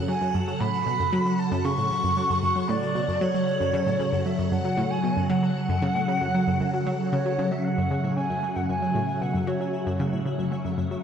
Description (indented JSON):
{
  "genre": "ambient, sequencer-driven space music",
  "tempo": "115 BPM",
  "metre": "4/4",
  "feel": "straight",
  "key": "F# minor",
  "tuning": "A4 = 440 Hz",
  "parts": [
    { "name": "phased string machine", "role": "sustained chords", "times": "0.0-11.0 s", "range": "C#3 to F#5", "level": "-27 LUFS", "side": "equal", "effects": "ensemble chorus, phaser" },
    { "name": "analog pluck", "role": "riff", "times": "0.0-11.0 s", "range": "F#2 to F#3", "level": "-27 LUFS", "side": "equal", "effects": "chorus, analog delay" },
    { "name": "pulsing gated texture", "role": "texture", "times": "0.0-11.0 s", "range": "A4 to E5", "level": "-40 LUFS", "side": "right 2 dB", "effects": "chorus, built-in reverb" },
    { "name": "mellow concert flute", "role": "melody", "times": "0.1-10.0 s", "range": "C#5 to C#6", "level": "-28 LUFS", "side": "right 1 dB", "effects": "analog delay" }
  ],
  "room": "wet plate reverb, RT60 2.9 s",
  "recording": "dark, warm production",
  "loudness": "-23 LUFS",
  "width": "side -8 dB against mid",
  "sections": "0.0-7.6 A section; 7.6-11.0 B section",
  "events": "none",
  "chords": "0.0 F#m",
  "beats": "0.34 0.86 | 1.39 1.91 2.43 2.95 | 3.47 4.00 4.52 5.04 | 5.56 6.08 6.60 7.12 | 7.65 8.17 8.69 9.21 | 9.73 10.26 10.78"
}